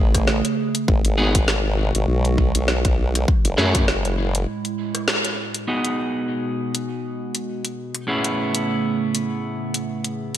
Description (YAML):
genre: glitch hop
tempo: 100 BPM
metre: 4/4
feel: swing 56% on 16ths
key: G# phrygian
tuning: A4 = 440 Hz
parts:
  - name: warbly tape-like pad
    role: sustained chords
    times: 0.0-10.4 s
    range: A2 to G#4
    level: -27 LUFS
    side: right 2 dB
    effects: chorus, built-in reverb, sidechain pumping
  - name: formant-sweep wobble bass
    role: bass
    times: 0.0-4.5 s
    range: F#1 to F#2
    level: -21 LUFS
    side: equal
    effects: chorus, tube saturation
  - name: drum and bass drum kit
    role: drums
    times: 0.1-10.4 s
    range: hi-hat, rim click, snare drum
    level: -23 LUFS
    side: equal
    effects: gated reverb
  - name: electronic kick drum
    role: drums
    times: 0.1-3.9 s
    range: none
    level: -19 LUFS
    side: equal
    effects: overdrive
  - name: electric guitar at the edge of break-up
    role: stabs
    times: 1.2-10.4 s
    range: A2 to G#4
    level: -24 LUFS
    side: equal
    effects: sidechain pumping, low-pass filter, ping-pong delay
room: moderate lush hall reverb, RT60 1.5 s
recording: bright 1980s-style digital production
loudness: -19 LUFS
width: side -11 dB against mid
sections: 0.0-5.7 A section; 5.7-10.4 B section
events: drop 0.0-5.7; break 4.5-5.7; band accent 5.1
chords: 0.0 Amaj7; 0.9 G#m7; 3.3 F#m9; 5.7 G#m7; 8.1 Amaj7